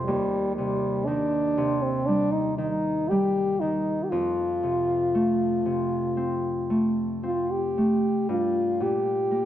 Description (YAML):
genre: celtic folk, Celtic slow air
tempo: 58 BPM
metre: 4/4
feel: rubato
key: unclear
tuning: A4 = 440 Hz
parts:
  - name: warm French horn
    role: melody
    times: 0.0-9.5 s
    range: G3 to G4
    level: -25 LUFS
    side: left 1 dB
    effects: none
  - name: Celtic harp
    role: accompaniment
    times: 0.0-9.5 s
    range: Eb2 to G5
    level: -27 LUFS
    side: right 1 dB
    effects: none
room: moderate scoring stage reverb, RT60 2.1 s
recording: nothing above 7.4 kHz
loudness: -23 LUFS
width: side -11 dB against mid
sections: 0.0-9.5 A section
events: none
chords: 0.1 Cm/Eb; 4.1 F; 8.3 Gm